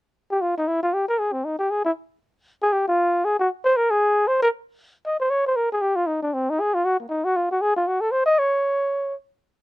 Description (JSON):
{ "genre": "jazz", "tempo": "234 BPM", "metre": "4/4", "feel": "swing 59% on 8ths", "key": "unclear", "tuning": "A4 = 440 Hz", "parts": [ { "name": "mellow flugelhorn", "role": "solo", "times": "0.3-9.1 s", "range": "Bb3 to Eb5", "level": "-19 LUFS", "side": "equal", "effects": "none" } ], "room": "little or no reverb", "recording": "dry, close 1970s-style studio recording", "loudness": "-20 LUFS", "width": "side -18 dB against mid", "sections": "0.1-2.2 A section; 2.2-9.6 B section", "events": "none", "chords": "none", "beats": "| 0.14 0.39 0.65 0.91 | 1.17 1.43 1.68 1.94 | 2.20 2.46 2.71 2.97 | 3.23 3.49 3.74 4.00 | 4.26 4.51 4.77 5.03 | 5.28 5.54 5.80 6.05 | 6.31 6.57 6.82 7.08 | 7.33 7.59 7.85 8.11 | 8.36 8.62 8.87 9.13" }